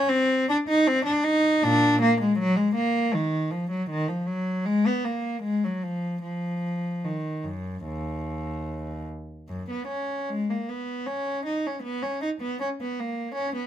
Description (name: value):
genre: classical, baroque-style suite movement for unaccompanied cello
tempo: 71-80 BPM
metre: 4/4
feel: rubato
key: Eb minor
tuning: A4 = 439 Hz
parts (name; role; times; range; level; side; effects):
- rich cello; solo; 0.0-13.7 s; Eb2 to D#4; -24 LUFS; equal; none
room: light reverb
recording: close, detailed microphones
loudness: -24 LUFS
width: side -10 dB against mid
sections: 0.0-9.5 A section; 9.5-13.7 A section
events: none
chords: none